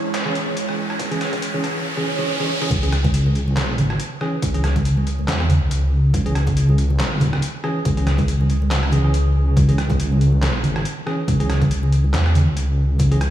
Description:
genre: deep dubstep.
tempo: 140 BPM.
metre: 4/4.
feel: swing 56% on 16ths, half-time.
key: C# minor.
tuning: A4 = 439 Hz.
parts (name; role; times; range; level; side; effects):
deep dark ambient pad; sustained chords; 0.0-1.8 s; G#3 to C#5; -30 LUFS; right 4 dB; chorus, built-in reverb.
riser and swell; sound effects; 0.0-2.7 s; none; -26 LUFS; right 2 dB; none.
flickering grainy texture; texture; 0.0-1.9 s; C#4 to C#5; -33 LUFS; right 3 dB; built-in reverb.
dark detuned saw bass; bass; 0.1-13.3 s; C#2 to E2; -18 LUFS; equal; tube saturation, high-pass filter.
trip hop sampler-style drum kit; drums; 0.1-13.3 s; handclaps, hi-hat, rim click, snare drum, toms; -26 LUFS; equal; high-pass filter on hats, high-pass filter on snare, high-pass filter on toms, high-pass filter on room.
bell-like tine electric piano; stabs; 0.3-13.2 s; E3 to G#4; -26 LUFS; equal; dub echo.
electronic kick drum; drums; 1.0-13.1 s; none; -23 LUFS; equal; high-pass filter on kick, high-pass filter on room.
congas; percussion; 2.7-13.1 s; none; -25 LUFS; right 1 dB; dub echo.
room: moderate lush hall reverb, RT60 1.8 s.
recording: dreamy mix soaked in reverb, small room ambience.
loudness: -17 LUFS.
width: side -12 dB against mid.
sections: 0.0-2.7 A section; 2.7-13.3 B section.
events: build-up 0.0-2.7; riser 0.0-2.7; swell 1.9-2.7; drum fill 2.4-2.7; drop 2.7-13.3.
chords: 0.0 C#m.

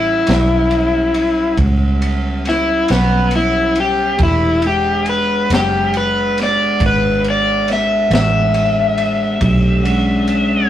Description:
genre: slow blues.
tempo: 46 BPM (dotted quarters).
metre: 12/8.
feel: straight.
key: E mixolydian.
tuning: A4 = 439 Hz.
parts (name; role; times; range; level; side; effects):
overdriven slide guitar; melody; 0.0-10.7 s; B3 to E5; -16 LUFS; left 2 dB; none.
mellow tonewheel organ; sustained chords; 0.0-10.7 s; D#3 to F#5; -21 LUFS; equal; slow rotary speaker.
vintage muted fingered electric bass; bass; 0.0-10.7 s; E1 to C#2; -18 LUFS; right 1 dB; none.
crunchy breakbeat drum kit; drums; 0.3-10.5 s; kick drum, ride cymbal, snare drum; -23 LUFS; equal; none.
room: wet small room reverb, RT60 0.6 s.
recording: rough rehearsal-room recording, tube saturation.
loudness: -13 LUFS.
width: side -11 dB against mid.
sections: 0.0-10.7 A section.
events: electric slide guitar solo 0.0-10.7.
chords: 0.0 A13 (rootless); 4.2 E13.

